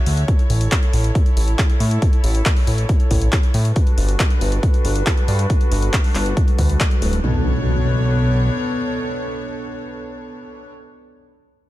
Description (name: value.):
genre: uplifting trance.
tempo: 138 BPM.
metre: 4/4.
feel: straight.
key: B minor.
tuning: A4 = 442 Hz.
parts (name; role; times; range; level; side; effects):
rich chamber string section; sustained chords; 0.0-10.7 s; B2 to E5; -26 LUFS; left 1 dB; sidechain pumping, low-pass filter.
fat analog bass; bass; 0.1-8.5 s; D1 to A2; -18 LUFS; equal; sidechain pumping.
punchy analog drum machine; drums; 0.1-7.2 s; handclaps, hi-hat; -25 LUFS; left 1 dB; overdrive, studio ambience.
electronic kick drum; drums; 0.3-6.9 s; none; -17 LUFS; equal; studio ambience.
impact; sound effects; 7.2-10.7 s; none; -25 LUFS; equal; none.
room: little or no reverb.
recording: dark, warm production.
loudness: -15 LUFS.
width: side -16 dB against mid.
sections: 0.0-7.2 A section; 7.2-10.7 B section.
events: filter sweep on string section 0.0-7.2.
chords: 0.3 A; 3.8 Gmaj7; 7.2 Bm7.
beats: | 0.28 0.72 1.15 1.59 | 2.02 2.46 2.89 3.33 | 3.76 4.20 4.63 5.07 | 5.50 5.93 6.37 6.80 | 7.24 7.67 8.11 8.54 | 8.98 9.41 9.85 10.28.